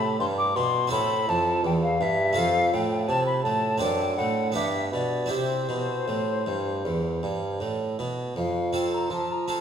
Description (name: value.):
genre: classical, baroque-style sonata movement with continuo.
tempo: 78-84 BPM.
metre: 4/4.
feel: rubato.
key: C major.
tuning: A4 = 440 Hz.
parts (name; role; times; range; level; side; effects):
mellow hollow silver concert flute; melody; 0.0-9.6 s; C5 to D6; -27 LUFS; left 3 dB; none.
harpsichord; accompaniment; 0.0-9.6 s; E2 to A4; -28 LUFS; right 1 dB; none.
warm bassoon; bass; 0.0-9.6 s; E2 to F3; -28 LUFS; right 2 dB; none.
room: wet recital hall reverb, RT60 1.5 s.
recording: none.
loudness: -23 LUFS.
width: side -8 dB against mid.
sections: 0.0-8.4 A section; 8.4-9.6 A section.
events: none.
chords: 0.0 C; 0.9 Am; 2.4 F; 3.8 D7/F#; 4.6 G; 5.3 C; 8.4 F.